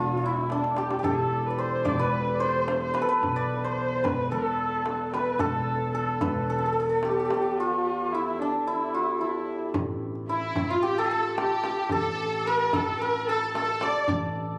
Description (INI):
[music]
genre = Persian modal ensemble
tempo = 110 BPM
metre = 4/4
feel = straight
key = E dastgah shur, A dastgah homayun from 9.7 s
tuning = A4 = 440 Hz
[part]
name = santur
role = melody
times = 0.0-14.6 s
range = D4 to D5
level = -29 LUFS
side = equal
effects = none
[part]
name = dark kamancheh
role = second line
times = 0.0-14.1 s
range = D4 to D5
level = -34 LUFS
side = equal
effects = none
[part]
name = upright bass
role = bass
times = 0.0-14.6 s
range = E1 to B1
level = -36 LUFS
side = equal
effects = none
[part]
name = clear double bass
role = drone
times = 0.0-9.8 s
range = E2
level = -40 LUFS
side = equal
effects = none
[part]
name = tombak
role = percussion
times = 0.1-14.2 s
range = none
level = -36 LUFS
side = equal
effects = none
[part]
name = rich studio violin section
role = second line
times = 10.3-14.1 s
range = E4 to D5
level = -35 LUFS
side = equal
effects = none
[sound]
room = wet recital hall reverb, RT60 1.4 s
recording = recorded on a phone in the room, club ambience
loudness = -27 LUFS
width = mono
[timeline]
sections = 0.0-9.7 A section; 9.7-14.6 B section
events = drum fill 0.5-1.0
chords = none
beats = 0.50 | 1.05 1.59 2.13 2.68 | 3.22 3.77 4.31 4.85 | 5.40 5.94 6.49 7.03 | 7.57 8.12 8.66 9.20 | 9.75 10.29 10.83 11.38 | 11.92 12.46 13.01 13.55 | 14.09